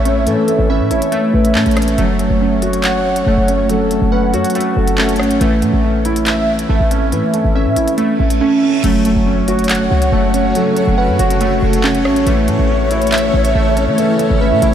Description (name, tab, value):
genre	hip hop, drill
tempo	140 BPM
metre	4/4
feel	half-time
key	F# minor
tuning	A4 = 440 Hz
part	breathy flute-like synth lead	second line	0.0-5.4, 8.8-14.7 s	A4 to C#5	-20 LUFS	left 3 dB	chorus, diffuse ambient delay
part	felt-muted upright piano	accompaniment	0.0-14.7 s	E3 to F#5	-18 LUFS	right 1 dB	analog chorus, low-pass filter
part	glassy digital keys	arpeggios	0.0-14.7 s	A3 to F#5	-17 LUFS	right 1 dB	chorus, low-pass filter, diffuse ambient delay
part	short 808-style bass	bass	0.0-14.7 s	F#1 to E3	-17 LUFS	equal	none
part	drill drum kit	drums	0.1-14.7 s	crash cymbal, handclaps, hi-hat, rim click	-24 LUFS	equal	none
part	reverse cymbal and impact	sound effects	8.1-10.6 s	none	-30 LUFS	right 1 dB	none
part	granular cloud pad	sustained chords	9.4-14.7 s	C#3 to C#5	-23 LUFS	left 1 dB	built-in reverb
room	moderate huge ambient reverb, RT60 6.6 s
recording	dreamy mix soaked in reverb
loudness	-12 LUFS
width	side -9 dB against mid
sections	0.0-8.8 A section; 8.8-14.7 B section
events	reverse cymbal 8.1-8.8; drums muted 8.4-8.8; impact 8.8-10.6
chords	0.0 A; 2.0 F#m; 5.4 A; 8.8 F#m; 12.3 A